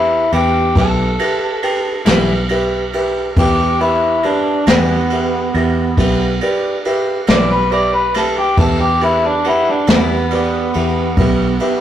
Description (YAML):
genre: slow blues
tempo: 46 BPM (dotted quarters)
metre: 12/8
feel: straight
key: E minor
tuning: A4 = 440 Hz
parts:
  - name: crunchy overdriven guitar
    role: melody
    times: 0.0-11.8 s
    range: B3 to D5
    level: -17 LUFS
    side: equal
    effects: none
  - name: clear upright piano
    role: accompaniment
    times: 0.0-11.8 s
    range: G4 to G5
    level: -20 LUFS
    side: right 1 dB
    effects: none
  - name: vintage muted fingered electric bass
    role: bass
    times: 0.0-11.6 s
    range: B1 to E2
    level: -19 LUFS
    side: equal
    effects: none
  - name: jazz brush drum kit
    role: drums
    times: 0.3-11.8 s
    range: kick drum, ride cymbal, snare drum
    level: -18 LUFS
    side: equal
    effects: none
  - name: semi-hollow electric guitar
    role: accompaniment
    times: 2.1-10.2 s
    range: E3 to E4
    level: -22 LUFS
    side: left 2 dB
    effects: harmonic tremolo
room: moderate stone room reverb, RT60 1.0 s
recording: rough rehearsal-room recording, tube saturation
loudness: -13 LUFS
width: side -10 dB against mid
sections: 0.0-11.8 A section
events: overdriven electric guitar solo 0.0-11.8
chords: 0.0 Em